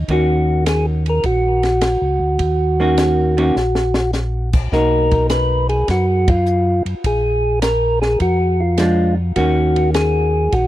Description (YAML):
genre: soul jazz organ trio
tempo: 103 BPM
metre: 4/4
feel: swing 68% on 8ths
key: Eb minor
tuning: A4 = 440 Hz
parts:
  - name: mellow tonewheel organ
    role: bass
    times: 0.0-10.7 s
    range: Bb1 to F#2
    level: -18 LUFS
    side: equal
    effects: slow rotary speaker
  - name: percussive tonewheel organ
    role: melody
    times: 0.1-10.7 s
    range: F4 to B4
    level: -18 LUFS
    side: equal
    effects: slow rotary speaker, tape echo
  - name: vintage hollow-body jazz guitar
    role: accompaniment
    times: 0.1-10.7 s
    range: Eb3 to Gb4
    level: -21 LUFS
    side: right 1 dB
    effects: none
  - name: compact cocktail drum kit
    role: drums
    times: 0.1-10.7 s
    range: crash cymbal, hi-hat, kick drum, ride cymbal, snare drum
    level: -20 LUFS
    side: equal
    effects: none
room: little or no reverb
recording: dry, close 1970s-style studio recording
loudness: -14 LUFS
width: side -14 dB against mid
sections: 0.0-10.7 A section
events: drum fill 3.6-4.1; band accent 6.2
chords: 0.1 Ebm7; 4.7 Bmaj7; 7.0 Bb7; 9.4 Ebm7